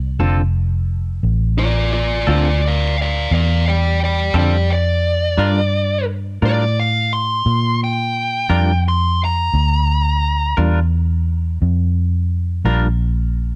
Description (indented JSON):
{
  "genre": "slow blues",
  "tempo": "58 BPM (dotted quarters)",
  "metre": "12/8",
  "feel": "straight",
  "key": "unclear",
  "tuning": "A4 = 440 Hz",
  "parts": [
    { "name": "vintage muted fingered electric bass", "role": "bass", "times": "0.0-13.6 s", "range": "F1 to Bb2", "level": "-19 LUFS", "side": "equal", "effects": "none" },
    { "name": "clean electric guitar", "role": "accompaniment", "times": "0.2-12.9 s", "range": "D3 to Bb4", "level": "-22 LUFS", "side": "equal", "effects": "harmonic tremolo" },
    { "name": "smooth overdriven lead guitar", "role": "melody", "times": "1.6-10.6 s", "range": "F4 to C6", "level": "-22 LUFS", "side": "equal", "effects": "slapback echo" }
  ],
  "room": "little or no reverb",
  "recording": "dry, close 1970s-style studio recording",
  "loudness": "-18 LUFS",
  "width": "mono",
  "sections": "0.0-13.6 A section",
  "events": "lead electric guitar solo 0.0-13.6",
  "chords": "0.0 Dm7; 5.4 Gm7",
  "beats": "0.20 | 1.24 2.27 3.31 4.35 | 5.39 6.43 7.46 8.50 | 9.54 10.58 11.62 12.66"
}